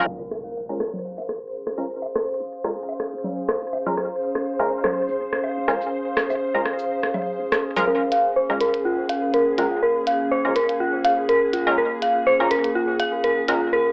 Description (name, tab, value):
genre	minimal techno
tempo	123 BPM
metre	4/4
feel	swing 55% on 16ths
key	Bb minor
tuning	A4 = 440 Hz
part	wavetable chord stab	stabs	0.0-13.6 s	Ab3 to Bb4	-27 LUFS	equal	cassette tape, tape echo
part	swarming drone	texture	0.0-13.9 s	Ab4 to C5	-32 LUFS	equal	built-in reverb, cassette tape
part	impact	sound effects	0.1-2.0 s	none	-48 LUFS	equal	none
part	warbly tape-like pad	texture	1.5-13.9 s	Bb3 to F5	-32 LUFS	equal	chorus, built-in reverb, phaser, cassette tape
part	electronic shaker and hi-hat	drums	0.3-13.6 s	none	-38 LUFS	equal	cassette tape
part	electronic rim click, woodblock and congas	percussion	0.3-7.9 s	none	-28 LUFS	equal	cassette tape
part	punchy sub bass	bass	0.4-7.5 s	Ab1 to Db2	-47 LUFS	equal	high-pass filter
part	dark detuned synth bell	riff	7.9-13.8 s	F4 to F5	-22 LUFS	equal	chorus, tremolo, low-pass filter, cassette tape, analog delay
room	wet small room reverb, RT60 0.5 s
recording	home recording on cassette, low-pass filter, AM radio sound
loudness	-23 LUFS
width	mono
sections	0.1-7.9 A section; 7.9-13.9 B section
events	impact 0.1-2.0; filter sweep on synth stab 0.1-7.9; filter sweep 0.1-7.9; build-up 7.9-13.9; filter sweep on synth bell 7.9-13.9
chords	0.1 Bbm7